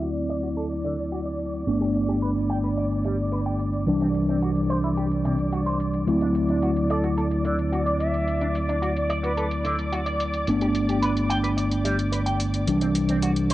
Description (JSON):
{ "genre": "nu-disco, nu disco", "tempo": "109 BPM", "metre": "4/4", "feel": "straight", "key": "D mixolydian", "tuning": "A4 = 439 Hz", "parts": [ { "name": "mellow tine electric piano", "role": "accompaniment", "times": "0.0-13.5 s", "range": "E3 to E4", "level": "-24 LUFS", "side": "equal", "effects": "medium stereo tremolo, cassette tape, analog delay" }, { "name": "muted studio string section", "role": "sustained chords", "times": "0.0-13.5 s", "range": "D5 to D6", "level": "-32 LUFS", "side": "equal", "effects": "vintage 12-bit sampler grit, cassette tape" }, { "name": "electric guitar with an envelope filter", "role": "riff", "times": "0.0-13.5 s", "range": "C3 to G5", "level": "-31 LUFS", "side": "right 1 dB", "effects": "lush chorus, low-pass filter, cassette tape" }, { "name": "fingered electric bass with an envelope filter", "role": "bass", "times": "0.0-13.5 s", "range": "G1 to D2", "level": "-28 LUFS", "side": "equal", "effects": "tube saturation" }, { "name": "electronic hi-hat", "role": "drums", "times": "0.0-13.5 s", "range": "none", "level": "-37 LUFS", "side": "equal", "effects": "low-pass filter on hats, small room ambience, cassette tape, low-pass filter on snare" }, { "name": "breathy bright jazz flute", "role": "melody", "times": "0.3-1.1, 6.9-9.5 s", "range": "A4 to E5", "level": "-33 LUFS", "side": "equal", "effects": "cassette tape, analog delay" } ], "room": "light reverb", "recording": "home recording on cassette, low-pass filter", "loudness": "-22 LUFS", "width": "side -15 dB against mid", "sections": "0.0-13.5 A section", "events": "filter sweep on drum 0.0-13.5; filter sweep on clean electric guitar 0.0-13.5; filter sweep 0.0-13.5", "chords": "0.0 D7; 1.7 Gadd9; 3.9 C; 6.1 D7; 10.5 Gadd9; 12.7 C" }